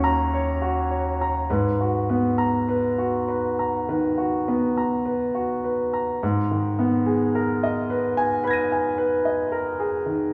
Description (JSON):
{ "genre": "classical, impressionist solo piano", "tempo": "50-56 BPM", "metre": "4/4", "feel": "rubato", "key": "G# minor", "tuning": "A4 = 439 Hz", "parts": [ { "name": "clear concert grand piano", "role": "solo", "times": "0.0-10.3 s", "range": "D#2 to D#7", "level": "-23 LUFS", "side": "equal", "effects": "none" } ], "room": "moderate recital hall reverb, RT60 1.4 s", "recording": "heard from further back in the room", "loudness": "-23 LUFS", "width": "mono", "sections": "0.0-6.2 A section; 6.2-10.3 B section", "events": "none", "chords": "0.0 D#m7; 1.5 G#m9; 6.2 G#madd9", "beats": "0.32 | 1.48 2.69 3.87 5.05 | 6.22 7.33 8.43 9.51" }